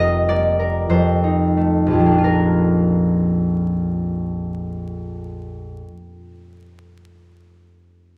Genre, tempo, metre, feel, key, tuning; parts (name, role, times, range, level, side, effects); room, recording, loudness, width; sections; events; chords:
classical, solo harp piece; 46 BPM; 3/4; rubato; Bb major; A4 = 439 Hz
concert harp; solo; 0.0-6.2 s; F1 to Eb5; -19 LUFS; equal
wet stone room reverb, RT60 1.5 s; heard from further back in the room, vinyl crackle; -18 LUFS; mono
0.0-2.3 A section; 2.3-6.2 B section
slowing down 0.0-2.3
0.0 Bb/F; 0.9 F9; 2.3 Bb